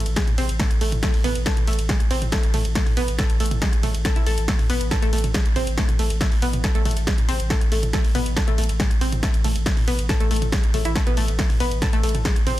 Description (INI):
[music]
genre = driving peak-time techno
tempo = 139 BPM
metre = 4/4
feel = straight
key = A harmonic minor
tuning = A4 = 441 Hz
[part]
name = saturated sub bass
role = bass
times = 0.0-12.6 s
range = A1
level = -25 LUFS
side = equal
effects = overdrive, sidechain pumping, low-pass filter
[part]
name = punchy analog drum machine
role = drums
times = 0.0-12.6 s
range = hi-hat, ride cymbal, snare drum, toms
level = -26 LUFS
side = right 1 dB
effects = none
[part]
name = analog pluck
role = riff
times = 0.2-12.5 s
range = G#3 to A4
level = -27 LUFS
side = equal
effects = chorus, tube saturation, sidechain pumping, ping-pong delay
[part]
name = electronic kick drum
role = drums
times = 0.2-12.3 s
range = none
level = -22 LUFS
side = equal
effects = none
[sound]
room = light reverb, digital ambience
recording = dense, heavily limited modern master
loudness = -19 LUFS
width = side -15 dB against mid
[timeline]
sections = 0.0-12.6 A section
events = none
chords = 0.0 A5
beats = 0.16 0.60 | 1.03 1.46 1.89 2.32 | 2.75 3.19 3.62 4.05 | 4.48 4.91 5.34 5.78 | 6.21 6.64 7.07 7.50 | 7.93 8.37 8.80 9.23 | 9.66 10.09 10.52 10.96 | 11.39 11.82 12.25